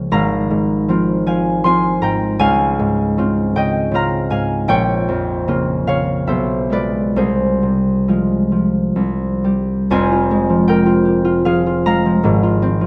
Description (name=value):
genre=classical, solo harp piece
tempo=58-82 BPM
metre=3/4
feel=rubato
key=F minor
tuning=A4 = 439 Hz
part: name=concert harp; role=solo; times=0.0-12.9 s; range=F1 to C6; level=-16 LUFS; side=equal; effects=none
room=moderate recital hall reverb, RT60 1.5 s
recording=none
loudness=-16 LUFS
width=mono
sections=0.0-9.9 A section; 9.9-12.9 B section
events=none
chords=0.1 Fm/Ab; 2.4 Dbmaj7; 4.7 Gm7b5/Bb; 6.3 Bdim7; 7.2 Fm/C; 9.0 C5; 9.9 Fm; 12.2 Fm/Ab